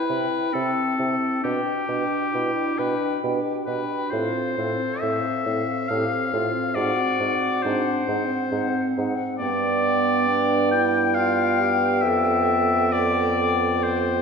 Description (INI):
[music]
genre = classical, slow romantic movement for wind quintet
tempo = 68 BPM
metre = 3/4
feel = rubato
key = unclear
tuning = A4 = 440 Hz
[part]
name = concert flute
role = melody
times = 0.0-14.2 s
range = F5 to G5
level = -29 LUFS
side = left 8 dB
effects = none
[part]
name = clear oboe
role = second line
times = 0.0-14.2 s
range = G4 to G5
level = -24 LUFS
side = left 2 dB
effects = none
[part]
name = mellow French horn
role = accompaniment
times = 0.0-14.2 s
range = B3 to E4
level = -30 LUFS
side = equal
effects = none
[part]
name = mellow clarinet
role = accompaniment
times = 0.0-14.2 s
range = B3 to A4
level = -29 LUFS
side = right 4 dB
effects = none
[part]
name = dark bassoon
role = bass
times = 0.1-14.2 s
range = F2 to C3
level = -26 LUFS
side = right 3 dB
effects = none
[sound]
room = wet scoring stage reverb, RT60 1.8 s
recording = heard from further back in the room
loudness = -20 LUFS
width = side -5 dB against mid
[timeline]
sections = 0.0-14.2 A section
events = none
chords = 0.0 C; 1.4 G/B; 4.1 F/A; 6.8 Ab7; 9.4 G; 12.0 G7/F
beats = 0.54 | 1.44 2.34 3.23 | 4.12 5.02 5.90 | 6.77 7.64 8.52 | 9.41 10.29 11.17 | 12.04 12.94 13.84